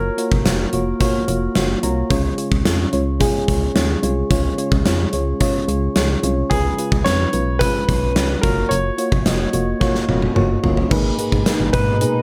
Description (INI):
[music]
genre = 1980s-style pop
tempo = 109 BPM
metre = 4/4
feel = straight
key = Db mixolydian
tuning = A4 = 436 Hz
[part]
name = clear concert grand piano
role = melody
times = 0.0-1.5, 6.5-12.2 s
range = Ab4 to Db5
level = -26 LUFS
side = equal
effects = none
[part]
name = mellow FM electric piano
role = accompaniment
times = 0.0-12.2 s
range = Ab2 to Bb5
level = -24 LUFS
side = equal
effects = chorus
[part]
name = solid FM bass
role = bass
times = 0.0-12.0 s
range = F1 to Ab2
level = -24 LUFS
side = equal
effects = none
[part]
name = gated 80s drum kit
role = drums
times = 0.2-12.1 s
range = crash cymbal, hi-hat, kick drum, snare drum, toms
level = -22 LUFS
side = equal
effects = gated reverb
[part]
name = phased analog pad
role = sustained chords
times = 11.2-12.2 s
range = Bb2 to Eb4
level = -28 LUFS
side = equal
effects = phaser, chorus
[sound]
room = light reverb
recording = none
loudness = -18 LUFS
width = mono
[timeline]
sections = 0.0-10.9 A section; 10.9-12.2 B section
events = FM electric piano fill 1.3-2.1; drum fill 9.8-10.9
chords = 0.0 Gbmaj7; 2.1 Db; 6.5 Db7; 8.4 Gbmaj7; 10.9 Abmadd9